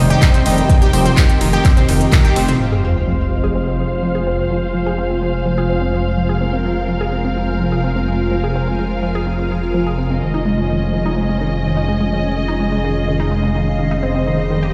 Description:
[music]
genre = melodic techno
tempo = 126 BPM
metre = 4/4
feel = straight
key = F minor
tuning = A4 = 440 Hz
[part]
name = muted studio string section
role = sustained chords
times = 0.0-14.7 s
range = G3 to G5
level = -25 LUFS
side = equal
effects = sidechain pumping, low-pass filter
[part]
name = analog pluck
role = arpeggios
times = 0.0-14.7 s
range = Eb3 to G5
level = -24 LUFS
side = equal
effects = chorus, cassette tape, sidechain pumping, delay
[part]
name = analog synth brass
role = stabs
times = 0.0-0.9 s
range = C3 to Eb4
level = -24 LUFS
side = equal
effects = chorus, sidechain pumping, delay
[part]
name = swelling detuned saw bass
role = bass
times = 0.0-14.7 s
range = F1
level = -22 LUFS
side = equal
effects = sidechain pumping
[part]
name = granular cloud pad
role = texture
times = 0.2-14.7 s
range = C4 to Ab5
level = -28 LUFS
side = equal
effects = built-in reverb, sidechain pumping
[part]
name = deep house drum kit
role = drums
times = 0.1-2.7 s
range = crash cymbal, handclaps, hi-hat, ride cymbal, toms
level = -23 LUFS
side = equal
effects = low-pass filter on hats, low-pass filter on toms, low-pass filter on cymbals, low-pass filter on snare
[part]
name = electronic kick drum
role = drums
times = 0.2-2.2 s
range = none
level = -14 LUFS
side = equal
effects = none
[part]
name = sub drop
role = sound effects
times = 2.6-4.5 s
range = none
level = -24 LUFS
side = equal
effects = none
[sound]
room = moderate lush hall reverb, RT60 2.0 s, digital ambience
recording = played on a big sound system in a bare room, stone room reverb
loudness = -17 LUFS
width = mono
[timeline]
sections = 0.0-2.6 A section; 2.6-14.7 B section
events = drop 0.0-2.6; band accent 2.1; impact 2.6-4.5; filter sweep on synth pluck 2.6-14.7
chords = 0.0 Cm/F; 2.6 Fm; 10.2 Dbadd9/F; 14.0 Cm/F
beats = 0.22 | 0.69 1.17 1.65 2.12 | 2.60 3.08 3.55 4.03 | 4.50 4.98 5.46 5.93 | 6.41 6.89 7.36 7.84 | 8.31 8.79 9.27 9.74 | 10.22 10.70 11.17 11.65 | 12.12 12.60 13.08 13.55 | 14.03 14.51

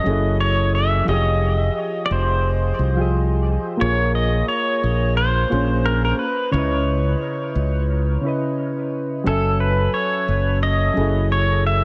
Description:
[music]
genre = sunset chillout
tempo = 88 BPM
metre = 4/4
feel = swing 56% on 16ths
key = Bb minor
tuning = A4 = 442 Hz
[part]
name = pedal steel guitar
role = melody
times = 0.0-11.8 s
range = A4 to Fb5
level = -25 LUFS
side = equal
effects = shimmer reverb, dub echo
[part]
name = soft electric-piano-like synth keys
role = accompaniment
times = 0.0-11.8 s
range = Db3 to Ab5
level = -26 LUFS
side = equal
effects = chorus, shimmer reverb, dub echo
[part]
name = modern bright fingered electric bass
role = bass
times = 0.1-11.8 s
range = F1 to Db2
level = -22 LUFS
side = equal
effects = none
[sound]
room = moderate spring reverb, RT60 2.5 s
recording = echo-heavy mix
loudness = -20 LUFS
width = mono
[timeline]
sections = 0.0-11.8 A section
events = none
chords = 0.0 Gbm9; 1.1 Fm9; 3.8 Bbm9; 6.2 Dbm9; 9.3 Gbm9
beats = 0.41 | 1.09 1.77 2.45 3.13 | 3.82 4.50 5.18 5.86 | 6.54 7.23 7.91 8.59 | 9.27 9.95 10.63 11.32

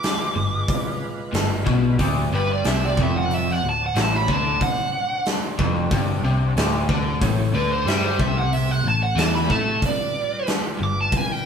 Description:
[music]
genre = blues rock power trio and southern rock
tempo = 92 BPM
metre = 4/4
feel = straight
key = D mixolydian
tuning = A4 = 437 Hz
[part]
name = bluesy overdriven lead guitar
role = melody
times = 0.0-11.5 s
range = B4 to D6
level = -24 LUFS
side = right 2 dB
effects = distortion
[part]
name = overdriven tonewheel organ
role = sustained chords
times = 0.0-11.5 s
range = G3 to D5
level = -36 LUFS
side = right 2 dB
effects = slow rotary speaker, chorus vibrato
[part]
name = huge arena drum kit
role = drums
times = 0.0-11.3 s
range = hi-hat, kick drum, snare drum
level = -24 LUFS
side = equal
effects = none
[part]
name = overdriven electric guitar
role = riff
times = 0.4-11.1 s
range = D2 to A3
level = -23 LUFS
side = left 1 dB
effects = none
[part]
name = vintage muted picked electric bass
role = bass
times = 0.4-11.1 s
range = D1 to A2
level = -26 LUFS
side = equal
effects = none
[sound]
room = moderate stone room reverb, RT60 1.1 s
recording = band playing live in one room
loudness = -19 LUFS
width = side -7 dB against mid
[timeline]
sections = 0.0-11.5 A section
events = lead electric guitar solo 0.0-11.5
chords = 0.0 G#dim7; 2.0 D7; 7.2 A7; 9.8 G7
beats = 0.04 0.69 1.35 | 2.00 2.66 3.31 3.96 | 4.62 5.27 5.92 6.57 | 7.22 7.87 8.52 9.17 | 9.82 10.47 11.12

